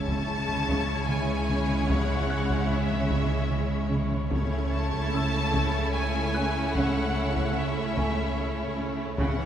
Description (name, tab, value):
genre	cinematic, suspense film score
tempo	74 BPM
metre	3/4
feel	straight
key	unclear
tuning	A4 = 441 Hz
part	warm symphonic violin section	melody	0.0-9.5 s	E5 to A5	-33 LUFS	left 1 dB	none
part	warm symphonic violin section	second line	0.0-9.5 s	E4 to C#5	-34 LUFS	left 1 dB	none
part	rich studio viola section	accompaniment	0.0-9.5 s	C#3 to C#4	-32 LUFS	equal	none
part	rich studio cello section	riff	0.0-9.4 s	C#3 to C#4	-35 LUFS	right 2 dB	none
part	rich symphonic double bass section	bass	0.0-9.3 s	C#2	-33 LUFS	right 1 dB	none
part	warm symphonic cello section	bass	0.0-9.5 s	C#3	-34 LUFS	right 4 dB	none
part	analog drone	drone	0.0-9.5 s	C#2	-33 LUFS	left 1 dB	chorus
part	timpani	percussion	0.0-0.6, 9.2-9.5 s	C#3	-41 LUFS	right 1 dB	none
part	impact	sound effects	0.0-1.9 s	none	-46 LUFS	equal	none
part	felt-muted upright piano	texture	0.0-9.5 s	G#5 to F#6	-43 LUFS	equal	none
part	warm studio violin section	texture	0.0-9.5 s	G#5 to G#6	-41 LUFS	left 3 dB	none
part	solo taiko drums	drums	0.1-9.5 s	none	-33 LUFS	left 1 dB	none
room	wet church reverb, RT60 2.6 s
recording	recorded in a church or concert hall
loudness	-24 LUFS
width	side -9 dB against mid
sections	0.0-9.5 A section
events	impact 0.0-1.9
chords	0.0 C#m; 4.3 A/C#